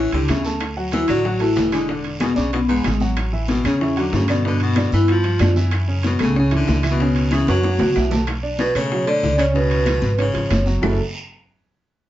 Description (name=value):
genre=Afro-Cuban jazz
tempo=188 BPM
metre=4/4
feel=straight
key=F# minor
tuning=A4 = 439 Hz
part: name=vibraphone with medium mallets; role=melody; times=0.0-11.0 s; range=G#3 to D5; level=-21 LUFS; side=left 1 dB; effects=none
part: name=edgy baritone saxophone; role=second line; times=0.0-11.0 s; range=G#2 to F#3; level=-26 LUFS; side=left 3 dB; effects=none
part: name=warm grand piano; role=accompaniment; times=0.0-11.0 s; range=A2 to D6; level=-26 LUFS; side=right 2 dB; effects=none
part: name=upright bass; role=bass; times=0.0-11.0 s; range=E1 to B2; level=-21 LUFS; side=equal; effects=none
part: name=bongos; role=percussion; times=0.1-10.9 s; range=none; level=-28 LUFS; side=left 2 dB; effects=none
part: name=congas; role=percussion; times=0.1-10.9 s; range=none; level=-28 LUFS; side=left 1 dB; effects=none
part: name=timbales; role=percussion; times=0.1-10.9 s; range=none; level=-29 LUFS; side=right 3 dB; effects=none
part: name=claves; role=percussion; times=0.3-10.9 s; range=none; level=-33 LUFS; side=left 4 dB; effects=none
part: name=guiro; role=percussion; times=0.3-10.9 s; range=none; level=-35 LUFS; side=right 3 dB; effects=none
room=moderate studio reverb, RT60 0.5 s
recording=heard from further back in the room, nothing above 7.6 kHz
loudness=-16 LUFS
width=side -13 dB against mid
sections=0.0-8.3 A section; 8.3-10.8 B section; 10.8-12.1 C section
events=drum fill 7.5-8.3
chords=0.0 A7; 0.6 Dadd9; 1.9 E7; 3.2 A6; 4.4 G7; 5.7 F#m7; 7.0 C#m7; 7.6 F#5; 8.3 Bm7; 9.6 C#7; 10.8 F#m9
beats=0.29 | 0.61 0.93 1.25 1.57 | 1.89 2.21 2.53 2.85 | 3.17 3.49 3.81 4.13 | 4.45 4.76 5.08 5.40 | 5.72 6.04 6.36 6.68 | 7.00 7.32 7.64 7.96 | 8.28 8.60 8.91 9.23 | 9.55 9.87 10.19 10.51 | 10.83